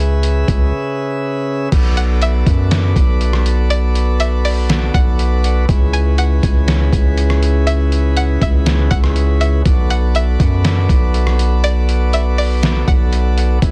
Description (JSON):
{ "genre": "hip hop, atmospheric cloud-rap", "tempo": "121 BPM", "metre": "4/4", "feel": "half-time", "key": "B dorian", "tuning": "A4 = 440 Hz", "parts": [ { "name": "chamber organ, principal chorus", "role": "sustained chords", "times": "0.0-13.7 s", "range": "C#3 to E5", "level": "-24 LUFS", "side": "equal", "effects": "sidechain pumping" }, { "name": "long sustained 808-style bass", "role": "bass", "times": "0.0-13.7 s", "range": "B1 to F#2", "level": "-17 LUFS", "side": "equal", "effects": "none" }, { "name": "trip hop sampler-style drum kit", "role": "drums", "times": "0.2-13.7 s", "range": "crash cymbal, hi-hat, kick drum, rim click, snare drum", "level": "-19 LUFS", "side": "equal", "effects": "overdrive" }, { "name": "string-like resonator pluck", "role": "melody", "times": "2.0-13.1 s", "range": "D5 to G#5", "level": "-26 LUFS", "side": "equal", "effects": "chorus, low-pass filter, tape echo" } ], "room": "digital ambience", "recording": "dense, heavily limited modern master", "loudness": "-15 LUFS", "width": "mono", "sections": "0.0-1.7 A section; 1.7-13.7 B section", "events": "break 0.7-1.7", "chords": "0.0 C#m7; 1.7 Bm7; 5.7 C#m7; 9.7 Bm7", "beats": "0.23 0.73 1.23 | 1.72 2.22 2.71 3.21 | 3.71 4.20 4.70 5.19 | 5.69 6.18 6.68 7.18 | 7.67 8.17 8.66 9.16 | 9.66 10.15 10.65 11.14 | 11.64 12.13 12.63 13.13 | 13.62" }